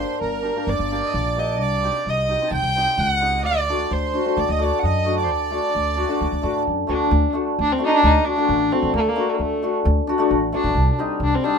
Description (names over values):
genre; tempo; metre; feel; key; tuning
klezmer; 131 BPM; 4/4; straight; D phrygian dominant; A4 = 439 Hz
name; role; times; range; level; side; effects
dark violin; melody; 0.0-11.6 s; A3 to G5; -22 LUFS; equal; none
accordion; second line; 0.0-6.6 s; Bb4 to A5; -29 LUFS; right 7 dB; none
hammered dulcimer; accompaniment; 0.0-11.6 s; G3 to G4; -23 LUFS; left 2 dB; none
upright bass; bass; 0.0-11.3 s; G1 to A2; -24 LUFS; equal; none
room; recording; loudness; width
moderate studio reverb, RT60 0.6 s; minimal, uncompressed stereo recording; -18 LUFS; side -6 dB against mid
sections
0.0-7.1 A section; 7.1-11.6 B section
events
speeding up 0.0-11.6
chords
0.0 Gm; 1.6 Cm; 3.5 D; 10.8 Cm